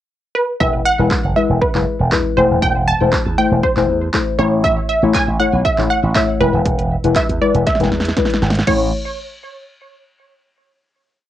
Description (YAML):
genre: dance-pop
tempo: 119 BPM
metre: 4/4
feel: straight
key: unclear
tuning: A4 = 436 Hz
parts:
  - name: wide unison pluck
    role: melody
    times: 0.4-8.9 s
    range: B4 to A5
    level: -18 LUFS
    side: right 2 dB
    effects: cassette tape, tape echo
  - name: deep mellow chord stab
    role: accompaniment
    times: 0.6-8.9 s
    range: G#3 to C#5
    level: -19 LUFS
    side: left 6 dB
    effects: chorus, sidechain pumping, cassette tape
  - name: slap bass with an envelope filter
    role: bass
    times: 0.6-8.9 s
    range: D#1 to A2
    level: -18 LUFS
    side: right 1 dB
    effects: sidechain pumping
  - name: punchy analog drum machine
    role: drums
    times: 0.6-8.8 s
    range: crash cymbal, handclaps, hi-hat, kick drum, snare drum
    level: -20 LUFS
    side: right 1 dB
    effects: cassette tape
room: light reverb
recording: home recording on cassette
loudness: -13 LUFS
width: side -12 dB against mid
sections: 0.0-0.6 pickup bar; 0.6-8.7 bridge; 8.7-10.7 final chord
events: drum fill 7.7-8.7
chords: 0.0 N.C.; 0.6 E; 2.4 C6; 4.4 A; 6.4 E; 8.7 A